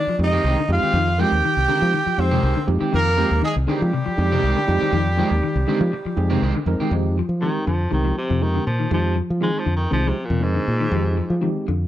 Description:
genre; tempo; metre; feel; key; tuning
afrobeat; 120 BPM; 4/4; straight; F dorian; A4 = 440 Hz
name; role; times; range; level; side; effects
warm trumpet; melody; 0.0-6.4 s; G4 to G5; -23 LUFS; right 1 dB; none
growling tenor saxophone; second line; 0.0-6.4 s; G3 to G4; -28 LUFS; right 4 dB; none
electric guitar at the edge of break-up; arpeggios; 0.0-11.8 s; C3 to F3; -26 LUFS; left 6 dB; none
fingered electric bass; bass; 0.1-11.9 s; C2 to F3; -21 LUFS; equal; none
tine electric piano; accompaniment; 0.2-11.7 s; Ab3 to Bb4; -27 LUFS; right 3 dB; overdrive, fast stereo tremolo
electric guitar at the edge of break-up; stabs; 0.2-6.9 s; Eb3 to G4; -28 LUFS; right 4 dB; spring reverb
clear baritone saxophone; melody; 7.4-11.4 s; Ab2 to Ab3; -26 LUFS; equal; none
room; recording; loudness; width
studio reverb; dry, close 1970s-style studio recording; -18 LUFS; side -12 dB against mid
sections
0.0-6.9 A section; 6.9-11.9 B section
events
baritone saxophone solo 6.9-11.9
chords
0.0 Fm9

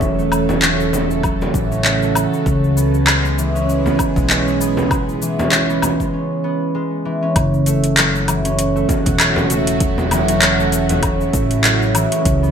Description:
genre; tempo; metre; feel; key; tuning
organic downtempo; 98 BPM; 4/4; swing 56% on 16ths; F# minor; A4 = 439 Hz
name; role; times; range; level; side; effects
bowed-like drone; sustained chords; 0.0-12.5 s; C#3 to A4; -24 LUFS; right 2 dB; built-in reverb, phaser, sidechain pumping
concert harp; arpeggios; 0.0-12.5 s; E3 to C#4; -19 LUFS; right 1 dB; ping-pong delay
upright bass; bass; 0.0-12.5 s; E1 to C#2; -21 LUFS; left 1 dB; sidechain pumping
deep house drum kit; drums; 0.0-12.5 s; cabasa, handclaps, hi-hat, woodblock; -18 LUFS; left 1 dB; overdrive, small room ambience, gated reverb
electronic kick drum; drums; 0.0-12.4 s; none; -21 LUFS; equal; overdrive, small room ambience
frame drum; percussion; 0.5-11.0 s; none; -25 LUFS; equal; none
room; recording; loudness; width
moderate plate reverb, RT60 1.6 s, small room reverb; bright 1980s-style digital production; -14 LUFS; side -7 dB against mid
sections
0.0-7.4 A section; 7.4-12.5 B section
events
break 6.1-7.4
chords
0.0 F#m7; 2.5 C#m7; 7.4 F#m7

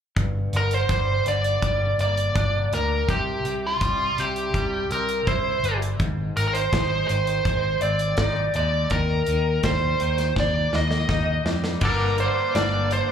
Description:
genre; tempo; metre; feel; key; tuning
quiet-loud alternative rock; 82 BPM; 4/4; straight; G phrygian; A4 = 440 Hz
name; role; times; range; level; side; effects
twangy electric guitar; arpeggios; 0.2-13.1 s; G2 to E4; -32 LUFS; left 3 dB; tremolo, slapback echo
picked electric bass; bass; 0.2-13.0 s; G1 to F2; -26 LUFS; equal; none
big rock drum kit; drums; 0.2-13.1 s; crash cymbal, hi-hat, kick drum, snare drum; -28 LUFS; equal; none
nasal lead guitar with a parked wah; melody; 0.6-13.1 s; F4 to Eb5; -24 LUFS; right 1 dB; overdrive, slapback echo, digital delay
room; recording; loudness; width
studio ambience; live gig heard through the venue's PA, club reverb; -20 LUFS; side -8 dB against mid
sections
0.2-11.8 A section; 11.8-13.1 B section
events
drum fill 10.4-11.8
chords
0.2 Gm; 3.1 C; 6.0 Ab; 8.9 Eb; 11.8 Gm

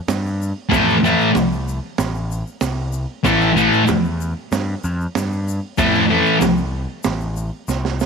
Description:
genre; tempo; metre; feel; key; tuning
garage rock duo or trio; 95 BPM; 4/4; straight; A minor; A4 = 441 Hz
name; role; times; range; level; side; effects
growling picked electric bass; bass; 0.1-8.1 s; A1 to G2; -22 LUFS; left 1 dB; overdrive
crunchy breakbeat drum kit; drums; 0.1-8.1 s; hi-hat, kick drum, snare drum; -25 LUFS; right 7 dB; none
tube shaker; percussion; 0.1-8.1 s; none; -36 LUFS; left 20 dB; none
thick fuzz guitar; riff; 0.7-6.4 s; A2 to A3; -15 LUFS; left 1 dB; distortion
room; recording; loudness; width
light reverb, small room ambience; 1960s-style stereo with parts hard left and right; -16 LUFS; side -5 dB against mid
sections
0.0-8.1 A section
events
drum fill 7.7-8.1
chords
0.0 Am

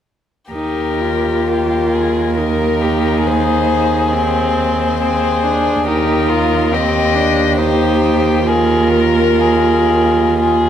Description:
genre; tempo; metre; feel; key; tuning
classical, slow romantic movement for string quartet; 68 BPM; 3/4; uneven beats, rubato; Eb major; A4 = 440 Hz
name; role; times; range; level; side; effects
warm violin; melody; 0.5-10.7 s; G4 to Eb5; -20 LUFS; left 8 dB; none
dark violin; second line; 0.5-10.7 s; F4 to Bb4; -18 LUFS; left 4 dB; none
warm viola; accompaniment; 0.5-10.7 s; C4 to F4; -18 LUFS; right 2 dB; none
warm cello; bass; 0.5-10.7 s; Eb2; -17 LUFS; right 4 dB; none
room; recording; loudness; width
moderate scoring stage reverb, RT60 1.6 s; none; -12 LUFS; side -9 dB against mid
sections
0.5-10.7 A section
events
none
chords
0.5 Eb; 3.3 Ab/Eb; 8.5 Bb5/Eb

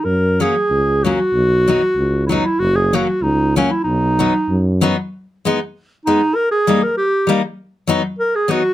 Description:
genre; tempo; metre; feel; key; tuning
alpine folk, alpine dance band; 96 BPM; 2/4; swing 54% on 8ths, uneven beats, rubato; B major, G# minor from 5.1 s; A4 = 440 Hz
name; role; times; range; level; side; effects
mellow clarinet; melody; 0.0-8.7 s; C#4 to A#4; -16 LUFS; right 1 dB; slapback echo
mellow tuba; bass; 0.1-4.9 s; F#1 to F#2; -18 LUFS; equal; none
picked steel-string acoustic guitar; accompaniment; 0.4-8.6 s; F#3 to D#4; -18 LUFS; left 3 dB; none
room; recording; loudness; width
little or no reverb; close, detailed microphones; -14 LUFS; side -13 dB against mid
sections
0.0-5.1 A section; 5.1-8.7 B section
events
none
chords
0.1 F#; 1.3 B; 2.6 F#; 3.8 B; 5.1 G#m; 6.4 D#; 7.6 B

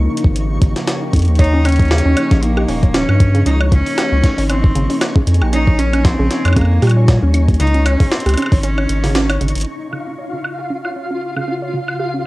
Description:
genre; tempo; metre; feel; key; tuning
IDM; 116 BPM; 4/4; swing 56% on 16ths; Db lydian; A4 = 440 Hz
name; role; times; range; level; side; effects
warbly tape-like pad; sustained chords; 0.0-12.3 s; Db2 to Ab5; -26 LUFS; equal; chorus, built-in reverb, phaser, sidechain pumping
round analog bass; bass; 0.0-9.7 s; Eb1 to Bb2; -14 LUFS; equal; none
flickering grainy texture; texture; 0.0-12.3 s; Eb4 to Db6; -26 LUFS; equal; built-in reverb, sidechain pumping
electronic kick drum; drums; 0.2-8.6 s; none; -12 LUFS; equal; overdrive, cassette tape
jungle sampler-style drum kit; drums; 0.2-12.0 s; hi-hat, snare drum, woodblock; -23 LUFS; equal; overdrive, low-pass filter on hats, cassette tape, low-pass filter on snare, low-pass filter on perc
clear cello; melody; 1.4-9.4 s; G3 to Eb4; -21 LUFS; equal; vintage 12-bit sampler grit, tape echo
warbly dusty pluck; arpeggios; 1.4-12.2 s; Db3 to Db5; -22 LUFS; right 1 dB; chorus, analog delay
room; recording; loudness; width
light reverb; home recording on cassette; -12 LUFS; side -19 dB against mid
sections
0.0-9.7 A section; 9.7-12.3 B section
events
break 8.6-9.7; band accent 9.2; drum fill 9.4; filter sweep on synth arpeggio sound 9.7-12.3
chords
0.0 Dbadd9; 1.4 Eb7; 3.5 Dbmaj9; 5.5 Bbm7; 7.6 Dbmaj9; 9.7 Eb7; 11.7 Db

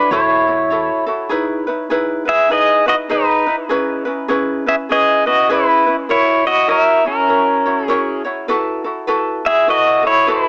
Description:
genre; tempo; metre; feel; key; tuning
Hawaiian; 100 BPM; 4/4; swing 61% on 8ths; E major; A4 = 440 Hz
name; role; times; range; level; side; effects
pedal steel guitar; melody; 0.0-10.5 s; C#4 to E5; -16 LUFS; equal; cassette tape, tape echo
ukulele; accompaniment; 0.0-10.5 s; C#4 to C#5; -22 LUFS; equal; none
upright bass; bass; 0.1-0.9 s; E2; -40 LUFS; equal; none
room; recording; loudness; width
light reverb; home recording on cassette, small speaker sound; -16 LUFS; mono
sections
0.0-1.3 A section; 1.3-10.5 B section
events
none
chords
0.0 A6; 1.3 Emaj7; 3.7 C#m7; 6.1 F#7; 8.5 B7sus4

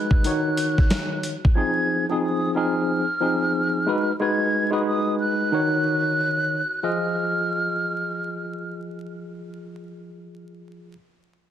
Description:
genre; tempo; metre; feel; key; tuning
hip hop, boom-bap hip-hop; 91 BPM; 4/4; swing 63% on 16ths; F phrygian; A4 = 440 Hz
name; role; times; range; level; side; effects
breathy mellow silver concert flute; melody; 0.0-8.8 s; Eb6 to Ab6; -26 LUFS; right 2 dB; high-pass filter, low-pass filter, tape echo
tine electric piano; accompaniment; 0.0-10.9 s; Eb3 to Eb5; -24 LUFS; left 1 dB; overdrive, fast stereo tremolo, high-pass filter, low-pass filter
dusty soul sampler-style drum kit; drums; 0.1-1.6 s; hi-hat, kick drum, snare drum; -20 LUFS; equal; none
room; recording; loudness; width
light reverb; dense, heavily limited modern master, vinyl crackle; -20 LUFS; side -10 dB against mid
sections
0.0-6.8 A section; 6.8-9.5 B section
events
none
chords
0.2 Ebm7; 1.6 Fm7; 3.9 Abm7; 5.5 Ebm7; 6.8 Fm7

